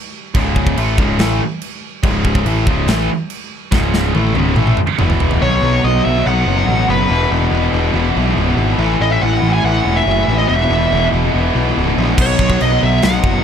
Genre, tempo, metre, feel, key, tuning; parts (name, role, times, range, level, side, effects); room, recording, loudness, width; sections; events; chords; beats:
heavy metal; 142 BPM; 4/4; straight; C# minor; A4 = 440 Hz
scooped high-gain guitar; riff; 0.3-13.4 s; C#2 to B3; -20 LUFS; right 14 dB; distortion
fuzz picked electric bass; bass; 0.3-13.4 s; C#1 to B1; -17 LUFS; equal; overdrive
tight metal drum kit; drums; 0.3-5.4, 12.2-13.3 s; china cymbal, crash cymbal, kick drum, snare drum, toms; -18 LUFS; equal
tight distorted guitar; riff; 0.4-13.4 s; C#2 to A3; -19 LUFS; left 14 dB; distortion
smooth overdriven lead guitar; melody; 5.4-13.4 s; B4 to G#5; -19 LUFS; right 1 dB; tape echo
little or no reverb; dark, warm production; -12 LUFS; side -8 dB against mid
0.0-5.4 A section; 5.4-13.4 B section
drum fill 3.7-5.4
0.0 C#m; 5.0 E5; 5.4 B5; 7.1 E5; 8.8 A5; 10.5 E5; 12.2 B5
| 0.36 0.78 1.20 1.62 | 2.04 2.47 2.89 3.31 | 3.73 4.15 4.57 4.99 | 5.42 5.84 6.26 6.68 | 7.10 7.53 7.95 8.37 | 8.79 9.22 9.64 10.06 | 10.49 10.91 11.33 11.76 | 12.18 12.60 13.03